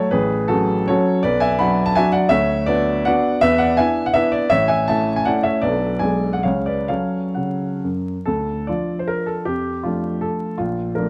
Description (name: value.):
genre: classical, romantic triple-time dance for piano with dotted rhythms.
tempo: 124-178 BPM.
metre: 3/4.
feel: rubato.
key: F# minor.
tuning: A4 = 439 Hz.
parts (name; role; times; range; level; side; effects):
warm baby grand piano; solo; 0.0-11.1 s; A1 to B5; -19 LUFS; equal; none.
room: moderate recital hall reverb, RT60 1.7 s.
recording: close, detailed microphones, vinyl crackle.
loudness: -19 LUFS.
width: mono.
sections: 0.0-8.3 A section; 8.3-11.1 B section.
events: none.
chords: 0.1 F#m/A; 1.2 Bm; 2.3 Bm/D; 3.4 E5; 4.5 A; 5.6 Bm7; 6.0 G#dim/B; 6.5 C#; 6.9 F#m; 8.3 Dm; 9.5 Dm/F.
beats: | 0.13 0.50 0.89 | 1.24 1.59 1.96 | 2.32 2.69 3.07 | 3.42 3.79 4.16 | 4.51 4.88 5.26 | 5.63 6.02 6.46 | 6.90 7.38 7.84 | 8.28 8.69 9.10 | 9.47 9.86 10.24 | 10.60 10.97.